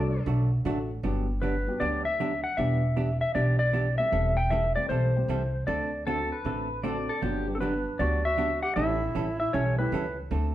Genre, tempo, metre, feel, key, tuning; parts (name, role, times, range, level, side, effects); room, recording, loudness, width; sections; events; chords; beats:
country, western swing; 155 BPM; 4/4; swing 66% on 8ths; G major; A4 = 440 Hz
pedal steel guitar; second line; 0.0-0.2, 6.1-7.5 s; G4 to D5; -34 LUFS; left 2 dB
dark upright piano; accompaniment; 0.0-9.9 s; F3 to A4; -36 LUFS; left 2 dB
upright bass; bass; 0.0-10.5 s; E1 to D2; -29 LUFS; equal
hollow-body jazz guitar; accompaniment; 0.3-10.5 s; D3 to A4; -33 LUFS; right 3 dB
clean lap steel guitar; melody; 1.4-10.2 s; A4 to G5; -28 LUFS; left 1 dB
growling clarinet; second line; 7.6-10.2 s; C4 to G4; -33 LUFS; right 3 dB
moderate large studio reverb, RT60 1.0 s; band playing live in one room; -25 LUFS; side -13 dB against mid
0.0-1.0 A section; 1.0-10.5 B section
pedal steel guitar solo 0.0-1.0
0.0 D; 1.0 Gmaj7; 2.6 Em7; 4.1 Am7/E; 5.7 D7; 7.2 Gmaj7; 8.8 A7
0.27 0.65 | 1.04 1.43 1.81 2.20 | 2.59 2.97 3.36 3.75 | 4.13 4.52 4.91 5.29 | 5.68 6.06 6.45 6.84 | 7.22 7.61 7.99 8.38 | 8.77 9.15 9.54 9.92 | 10.31